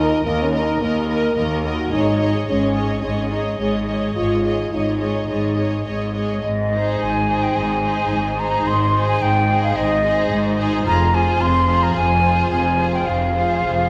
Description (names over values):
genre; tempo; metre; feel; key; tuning
cinematic, heroic adventure film score; 108 BPM; 4/4; straight; Ab major from 6.4 s; A4 = 439 Hz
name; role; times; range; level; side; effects
warm symphonic violin section; melody; 0.0-13.9 s; C5 to Eb5; -31 LUFS; equal; none
warm symphonic violin section; second line; 0.0-13.9 s; Ab4 to Db5; -31 LUFS; equal; none
rich symphonic viola section; accompaniment; 0.0-13.9 s; Eb4 to Bb4; -29 LUFS; equal; none
warm French horn section; sustained chords; 0.0-5.9 s; Ab3 to Gb4; -24 LUFS; equal; none
rich symphonic cello section; bass; 0.0-13.9 s; Eb2 to Ab2; -26 LUFS; equal; none
rich symphonic double bass section; bass; 0.0-13.9 s; F1 to Eb2; -26 LUFS; equal; none
hollow concert flute; second line; 6.4-13.9 s; Eb5 to C6; -22 LUFS; equal; none
room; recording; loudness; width
moderate scoring stage reverb, RT60 1.8 s; none; -19 LUFS; mono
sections
0.0-6.4 A section; 6.4-13.9 B section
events
none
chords
0.0 Ebm; 1.9 Absus4; 6.4 Ab; 10.9 Fm